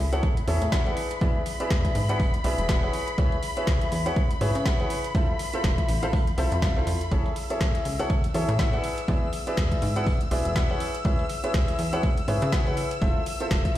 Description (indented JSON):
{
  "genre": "piano house",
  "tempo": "122 BPM",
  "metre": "4/4",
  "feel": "swing 58% on 16ths",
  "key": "A major",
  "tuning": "A4 = 444 Hz",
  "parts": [
    { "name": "string machine, violins", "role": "sustained chords", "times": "0.0-13.8 s", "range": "B5 to E6", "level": "-36 LUFS", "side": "equal", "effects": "ensemble chorus, sidechain pumping" },
    { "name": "clear upright piano", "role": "riff", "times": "0.0-13.8 s", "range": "E4 to F#5", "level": "-29 LUFS", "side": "left 1 dB", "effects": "sidechain pumping, ping-pong delay" },
    { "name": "plucky analog bass", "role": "bass", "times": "0.0-13.8 s", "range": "E1 to C#3", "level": "-28 LUFS", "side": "equal", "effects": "sidechain pumping" },
    { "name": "garage drum kit", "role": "drums", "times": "0.1-13.8 s", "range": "hi-hat, snare drum", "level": "-35 LUFS", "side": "equal", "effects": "overdrive" },
    { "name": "dusty soul sampler-style drum kit", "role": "drums", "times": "0.2-13.8 s", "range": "hi-hat, snare drum", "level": "-45 LUFS", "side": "right 1 dB", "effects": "none" },
    { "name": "electronic kick drum", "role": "drums", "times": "0.2-13.7 s", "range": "none", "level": "-25 LUFS", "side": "equal", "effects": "overdrive" }
  ],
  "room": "light reverb",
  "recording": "played on a big sound system in a bare room, stone room reverb",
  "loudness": "-22 LUFS",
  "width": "side -13 dB against mid",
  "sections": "0.0-13.8 A section",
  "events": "none",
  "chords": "0.0 Amaj7; 1.0 E7; 2.9 C#m7; 5.1 Fmaj7; 7.1 Amaj7; 8.8 E7; 10.8 C#m7; 13.0 Fmaj7",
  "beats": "0.23 0.72 | 1.21 1.71 2.20 2.69 | 3.18 3.67 4.16 4.66 | 5.15 5.64 6.13 6.62 | 7.12 7.61 8.10 8.59 | 9.08 9.57 10.07 10.56 | 11.05 11.54 12.03 12.53 | 13.02 13.51"
}